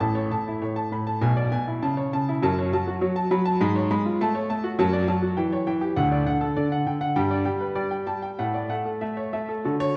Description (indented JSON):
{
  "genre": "classical-period piano sonatina",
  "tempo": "100 BPM",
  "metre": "2/4",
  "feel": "rubato",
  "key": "A major, D major from 4.8 s",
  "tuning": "A4 = 437 Hz",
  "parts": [
    { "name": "clear baby grand piano", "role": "solo", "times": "0.0-10.0 s", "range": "A1 to B5", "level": "-25 LUFS", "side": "equal", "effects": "none" }
  ],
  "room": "wet recital hall reverb, RT60 1.8 s",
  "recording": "heard from further back in the room",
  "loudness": "-25 LUFS",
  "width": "mono",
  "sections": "0.0-9.6 A section",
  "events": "none",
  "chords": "0.0 A; 1.2 E7/B; 1.8 A/C#; 2.4 F#m; 3.6 C#7/G#; 4.2 F#m/A; 4.8 D/F#; 5.4 C#dim/E; 6.0 D; 7.2 G; 8.4 D/A; 9.0 A"
}